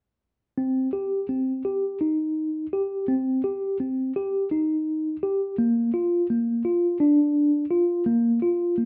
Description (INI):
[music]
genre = contemporary instrumental, contemporary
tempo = 168 BPM (eighths)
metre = 7/8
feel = straight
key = unclear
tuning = A4 = 440 Hz
[part]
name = mellow tine electric piano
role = solo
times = 0.6-8.9 s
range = Bb3 to G4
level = -24 LUFS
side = equal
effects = none
[sound]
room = moderate studio reverb, RT60 0.7 s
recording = close, detailed microphones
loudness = -24 LUFS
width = mono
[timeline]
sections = 0.6-8.9 A section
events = none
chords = none